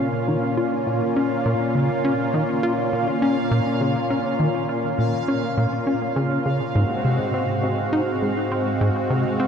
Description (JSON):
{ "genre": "ambient, sequencer-driven space music", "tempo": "102 BPM", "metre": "4/4", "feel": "straight", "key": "Bb minor", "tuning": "A4 = 440 Hz", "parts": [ { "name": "lush unison pad", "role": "sustained chords", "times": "0.0-9.5 s", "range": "Ab2 to Gb4", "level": "-23 LUFS", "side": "equal", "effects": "chorus" }, { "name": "plucky analog bass", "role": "riff", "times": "0.0-9.5 s", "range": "Ab2 to F4", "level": "-23 LUFS", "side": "equal", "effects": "tape echo" }, { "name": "bubbling stepped-filter texture", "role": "texture", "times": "0.0-9.5 s", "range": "F5", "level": "-32 LUFS", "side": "right 4 dB", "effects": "chorus, built-in reverb" } ], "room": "wet cathedral reverb, RT60 5.2 s", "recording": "in a vast, echoing space", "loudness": "-20 LUFS", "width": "side -7 dB against mid", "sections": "0.0-9.5 A section", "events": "none", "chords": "0.0 Bbm; 6.8 Ab7" }